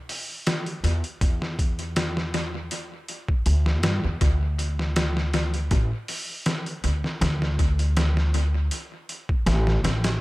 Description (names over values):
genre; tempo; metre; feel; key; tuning
trip hop; 80 BPM; 4/4; swing 53% on 16ths; unclear; A4 = 440 Hz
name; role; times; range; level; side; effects
trip hop sampler-style drum kit; drums; 0.1-10.2 s; hi-hat, kick drum, snare drum; -25 LUFS; equal; tape echo
upright bass; bass; 0.8-10.2 s; A1 to G2; -23 LUFS; equal; none
room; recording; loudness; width
little or no reverb; echo-heavy mix; -22 LUFS; side -20 dB against mid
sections
0.0-10.2 A section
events
none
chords
none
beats
0.46 | 1.21 1.96 2.71 3.46 | 4.21 4.96 5.71 6.46 | 7.21 7.96 8.71 9.46